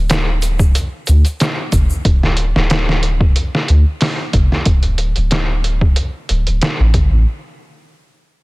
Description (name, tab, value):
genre	trip hop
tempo	92 BPM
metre	4/4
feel	swing 53% on 16ths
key	D minor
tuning	A4 = 442 Hz
part	soft dub sub bass	bass	0.0-7.2 s	D1 to D2	-14 LUFS	equal	none
part	trip hop sampler-style drum kit	drums	0.1-7.1 s	hi-hat, kick drum, snare drum	-15 LUFS	equal	none
part	egg shaker	percussion	0.1-2.0 s	none	-32 LUFS	left 2 dB	none
room	digital ambience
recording	heavily compressed radio sound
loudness	-13 LUFS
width	side -23 dB against mid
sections	0.0-7.3 A section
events	none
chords	none